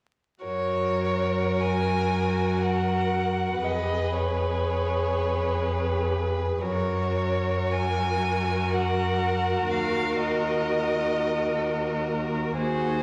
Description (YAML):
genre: classical, slow romantic movement for string quartet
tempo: 50-63 BPM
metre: 3/4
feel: rubato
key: F# major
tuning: A4 = 439 Hz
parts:
  - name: warm viola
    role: accompaniment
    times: 0.4-13.0 s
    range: F#4 to G#4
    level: -34 LUFS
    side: equal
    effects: none
  - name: rich cello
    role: bass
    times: 0.4-13.0 s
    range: D#2 to F#2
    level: -31 LUFS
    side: equal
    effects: none
  - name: clear violin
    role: melody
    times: 0.5-13.0 s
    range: B#4 to G#5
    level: -31 LUFS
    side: equal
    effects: none
  - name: warm violin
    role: second line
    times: 0.5-13.0 s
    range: G#4 to B4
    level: -32 LUFS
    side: equal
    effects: none
room: wet scoring stage reverb, RT60 1.6 s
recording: vinyl crackle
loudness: -26 LUFS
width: mono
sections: 0.4-13.0 A section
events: none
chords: 0.4 F#; 3.6 C#7/E#; 6.6 F#; 9.7 D#m